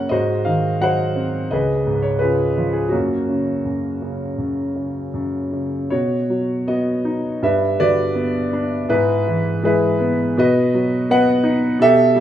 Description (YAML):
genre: classical, lyrical solo piano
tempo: 76-88 BPM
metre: 4/4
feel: rubato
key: F# major, B major from 5.9 s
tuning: A4 = 441 Hz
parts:
  - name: warm concert grand piano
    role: solo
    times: 0.0-12.2 s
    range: C#2 to F#5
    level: -16 LUFS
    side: equal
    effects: none
room: moderate recital hall reverb, RT60 1.4 s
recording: minimal, uncompressed stereo recording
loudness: -17 LUFS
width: side -11 dB against mid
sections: 0.0-5.9 A section; 5.9-12.2 B section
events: none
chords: 0.1 G#7; 1.5 C#7; 2.9 F#; 5.9 Badd9; 7.4 Gmaj7; 8.9 E/G#; 10.4 B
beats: | 0.11 0.82 1.52 2.21 | 2.93 3.65 4.38 5.14 | 5.92 6.69 7.44 8.17 | 8.90 9.64 10.37 11.09 | 11.80